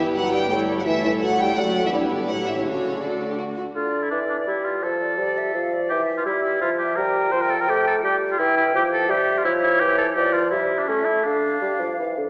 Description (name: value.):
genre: quick classical-period movement for symphony orchestra.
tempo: 168 BPM.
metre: 3/4.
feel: straight.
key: D major, D minor from 3.8 s.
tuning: A4 = 436 Hz.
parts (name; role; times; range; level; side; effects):
warm studio violin section; melody; 0.0-3.4 s; C#5 to G5; -28 LUFS; equal; none.
dark studio violin section; second line; 0.0-3.6 s; F#4 to D5; -30 LUFS; equal; none.
warm studio viola section; accompaniment; 0.0-3.6 s; A3 to F#4; -29 LUFS; equal; none.
mellow French horn section; sustained chords; 0.0-3.4 s; C#3 to G3; -29 LUFS; equal; none.
dark studio double bass section; bass; 0.0-3.6 s; F#1 to D2; -41 LUFS; equal; none.
warm studio cello section; bass; 0.0-3.6 s; F#2 to D3; -38 LUFS; equal; none.
bright silver concert flute; second line; 3.8-12.2 s; C5 to G5; -29 LUFS; equal; none.
warm oboe; second line; 3.8-12.0 s; C#4 to C5; -25 LUFS; equal; none.
dark bassoon; accompaniment; 3.8-12.3 s; D3 to A3; -26 LUFS; equal; none.
room: wet scoring stage reverb, RT60 2.0 s.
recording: heard from further back in the room, small speaker sound.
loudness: -22 LUFS.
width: mono.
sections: 0.0-3.8 A section; 3.8-12.3 B section.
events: none.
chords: 0.0 Em/G; 0.5 A7/G; 1.6 D/F#; 1.9 Em7/G; 2.3 A7; 2.7 D; 3.8 Dmadd9; 4.8 Dm/F; 5.9 Em; 7.0 Fadd9; 8.0 Em; 10.2 Dm/F; 10.5 Em7/G; 10.9 A; 11.2 Dm.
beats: 0.15 | 0.51 0.86 1.22 | 1.57 1.93 2.29 | 2.66 3.02 3.39 | 3.75 4.12 4.48 | 4.83 5.19 5.55 | 5.91 6.26 6.62 | 6.97 7.33 7.68 | 8.04 8.39 8.74 | 9.10 9.45 9.80 | 10.16 10.52 10.88 | 11.25 11.62 11.99.